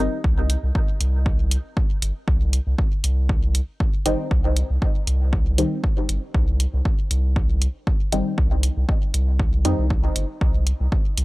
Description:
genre	dub techno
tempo	118 BPM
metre	4/4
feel	swing 54% on 16ths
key	C minor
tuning	A4 = 440 Hz
part	filtered dub chord stab	stabs	0.0-0.2, 4.1-9.8 s	Eb3 to Eb4	-27 LUFS	left 1 dB	phaser, sidechain pumping, dub echo
part	round analog bass	bass	0.0-11.2 s	G1 to F2	-21 LUFS	equal	tube saturation, sidechain pumping
part	electronic kick drum	drums	0.2-11.0 s	none	-21 LUFS	equal	none
part	electronic hi-hat	drums	0.5-11.2 s	none	-26 LUFS	equal	none
room	little or no reverb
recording	dry, gritty hardware recording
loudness	-19 LUFS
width	side -20 dB against mid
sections	0.0-11.2 A section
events	none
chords	0.0 Cm

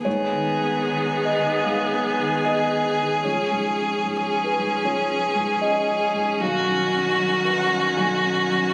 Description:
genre	neoclassical piano and strings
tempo	76 BPM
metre	4/4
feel	rubato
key	G# dorian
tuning	A4 = 440 Hz
part	rich cello	second line	0.0-8.7 s	D#3 to E#3	-36 LUFS	equal	none
part	felt-muted upright piano	accompaniment	0.0-8.7 s	B1 to G#5	-28 LUFS	equal	none
part	clear violin	melody	0.1-8.7 s	F#4 to G#4	-24 LUFS	equal	none
part	bright viola	accompaniment	0.1-8.7 s	B3 to C#4	-31 LUFS	equal	none
room	moderate spring reverb, RT60 1.3 s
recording	recorded on a phone in the room, club reverb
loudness	-22 LUFS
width	mono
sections	0.1-8.7 A section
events	none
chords	0.1 G#m; 3.2 C#; 6.4 Badd9

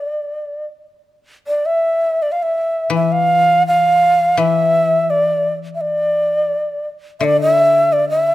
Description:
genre	japanese traditional, Japanese chamber music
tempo	83 BPM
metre	4/4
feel	rubato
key	D minor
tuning	A4 = 442 Hz
part	breathy reedy long shakuhachi	melody	0.0-8.3 s	D5 to F5	-14 LUFS	equal	none
part	koto	accompaniment	2.9-8.3 s	D3 to E3	-22 LUFS	left 6 dB	none
room	light reverb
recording	close, detailed microphones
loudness	-13 LUFS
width	side -15 dB against mid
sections	0.0-1.4 A section; 1.4-8.3 B section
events	none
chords	none

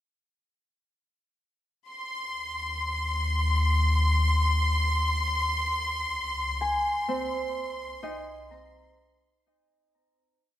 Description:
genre	ambient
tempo	63 BPM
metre	4/4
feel	straight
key	unclear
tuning	A4 = 438 Hz
part	deep rumbling drone	bass	2.6-9.4 s	C2 to Eb2	-26 LUFS	left 1 dB	built-in reverb
part	bright symphonic violin section	texture	1.9-9.5 s	C6	-28 LUFS	left 1 dB	none
part	Celtic harp	arpeggios	6.6-10.6 s	C4 to Bb5	-30 LUFS	equal	none
room	moderate spring reverb, RT60 2.5 s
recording	echo-heavy mix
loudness	-25 LUFS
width	side -12 dB against mid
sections	1.9-9.5 A section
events	fade-out 5.7-9.5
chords	1.9 Cm/Eb; 5.7 Db5; 7.6 Ab/C

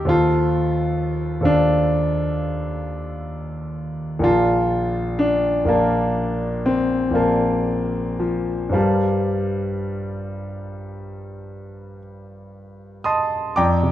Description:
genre	classical, impressionist solo piano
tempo	36-45 BPM (dotted quarters)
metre	9/8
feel	rubato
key	unclear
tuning	A4 = 440 Hz
part	warm concert grand piano	solo	0.0-13.9 s	Bb1 to Eb6	-19 LUFS	equal	none
room	moderate recital hall reverb, RT60 1.2 s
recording	dark, warm production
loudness	-18 LUFS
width	side -12 dB against mid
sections	0.0-13.6 A section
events	none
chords	0.1 F6/Eb; 4.2 Bbmaj7; 8.8 Gm11

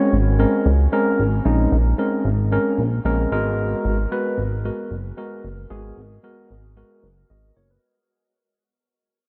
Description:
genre	early-eighties boogie funk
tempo	113 BPM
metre	4/4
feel	straight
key	unclear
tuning	A4 = 440 Hz
part	mellow tine electric piano	accompaniment	0.0-8.0 s	Ab3 to Eb5	-24 LUFS	equal	subtle chorus
part	chorused synth bass	bass	0.1-7.8 s	Gb1 to Db2	-22 LUFS	equal	none
room	moderate huge ambient reverb, RT60 7.2 s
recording	dreamy mix soaked in reverb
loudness	-20 LUFS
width	mono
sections	0.0-7.8 A section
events	fade-out 0.0-7.8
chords	0.0 Bbm9; 3.3 Abm9

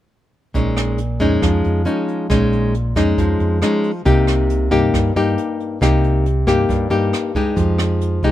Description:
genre	bossa nova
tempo	137 BPM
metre	4/4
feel	straight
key	unclear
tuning	A4 = 441 Hz
part	nylon-string guitar	accompaniment	0.5-8.3 s	G2 to G4	-17 LUFS	left 2 dB	none
part	fingered electric bass	bass	0.5-8.3 s	Bb1 to G2	-19 LUFS	right 1 dB	none
part	jazz brush drum kit	drums	0.5-8.3 s	hi-hat, kick drum, rim click	-23 LUFS	right 2 dB	none
room	little or no reverb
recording	minimal, uncompressed stereo recording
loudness	-15 LUFS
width	side -13 dB against mid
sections	0.5-8.3 A section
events	none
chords	0.5 Bbm7; 4.1 Cm7; 7.6 Fm9

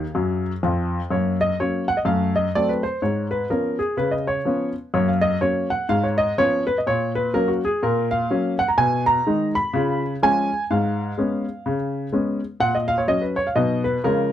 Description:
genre	jazz, stride piano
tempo	125 BPM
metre	4/4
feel	swing 60% on 8ths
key	F# major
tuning	A4 = 440 Hz
part	warm upright piano	solo	0.0-14.3 s	E#2 to B5	-19 LUFS	equal	none
room	light reverb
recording	dry, close 1970s-style studio recording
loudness	-19 LUFS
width	side -11 dB against mid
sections	0.0-1.1 A section; 1.1-14.3 B section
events	upright piano fill 0.0-1.1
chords	0.0 C#; 1.1 F#; 2.1 F#dim; 3.0 C#7/G#; 4.9 F#; 5.9 C#7/G#; 6.9 F#/A#; 8.8 G#m/B; 9.7 C#7; 10.7 C#7/G#; 12.6 F#/A#; 13.6 B

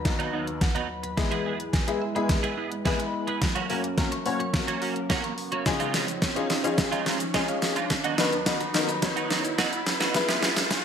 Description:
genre	dance-pop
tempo	107 BPM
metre	4/4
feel	straight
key	F# major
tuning	A4 = 435 Hz
part	warm baby grand piano	accompaniment	0.0-10.5 s	D#2 to C#5	-30 LUFS	left 4 dB	ensemble chorus, sidechain pumping
part	warm analog pad	sustained chords	0.0-10.8 s	D#2 to C#5	-36 LUFS	right 1 dB	chorus, sidechain pumping
part	riser	sound effects	1.0-10.8 s	none	-36 LUFS	right 1 dB	none
part	twelve-string electric guitar	riff	0.1-10.7 s	F#3 to G#4	-31 LUFS	right 7 dB	ensemble chorus
part	pop drum kit	drums	0.1-10.8 s	hi-hat, kick drum, shaker, snare drum	-26 LUFS	equal	overdrive, gated reverb
part	mallet-like synth pluck	arpeggios	0.3-10.8 s	C#3 to C#6	-36 LUFS	right 1 dB	chorus, sidechain pumping, ping-pong delay
room	moderate plate reverb, RT60 1.1 s, digital ambience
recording	bright 1980s-style digital production, high-pass filter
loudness	-24 LUFS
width	side -7 dB against mid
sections	0.0-10.8 A section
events	build-up 0.0-10.8; drum fill 0.0-10.8; filter sweep 0.0-10.8; riser 1.0-10.8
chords	0.0 B/D#; 1.2 E; 3.4 F#; 5.7 C#add9; 7.9 B/D#; 10.1 E

